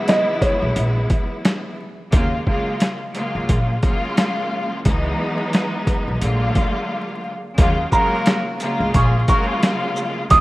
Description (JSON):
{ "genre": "hip hop, boom-bap hip-hop", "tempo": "88 BPM", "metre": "4/4", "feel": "swing 58% on 16ths", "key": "Eb phrygian", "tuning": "A4 = 438 Hz", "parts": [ { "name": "dark upright piano", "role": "melody", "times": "0.0-0.9, 7.9-10.4 s", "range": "Db5 to Eb6", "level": "-19 LUFS", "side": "right 2 dB", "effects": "high-pass filter, low-pass filter" }, { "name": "bright studio string section", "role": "accompaniment", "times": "0.0-10.4 s", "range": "Db2 to F4", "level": "-22 LUFS", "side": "equal", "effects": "high-pass filter, low-pass filter" }, { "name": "boom bap sampler-style drum kit", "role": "drums", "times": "0.1-10.4 s", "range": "hi-hat, kick drum, shaker, snare drum", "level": "-19 LUFS", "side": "equal", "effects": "overdrive" }, { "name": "upright bass", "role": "bass", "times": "0.6-10.4 s", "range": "Bb1 to Eb2", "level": "-20 LUFS", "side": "equal", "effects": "none" }, { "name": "clear trumpet section", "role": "stabs", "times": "7.9-9.6 s", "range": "Bb3 to Bb4", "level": "-28 LUFS", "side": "equal", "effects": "high-pass filter, low-pass filter, digital delay" } ], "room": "light reverb, small room ambience", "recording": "rough home demo mix, vinyl crackle", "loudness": "-17 LUFS", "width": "side -18 dB against mid", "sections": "0.0-7.6 A section; 7.6-10.4 B section", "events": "break 6.9-7.6", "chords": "0.0 Dbm7; 2.1 Ebm11 (rootless); 4.9 Dbm11; 6.2 Bb7b13; 7.6 Ebm11" }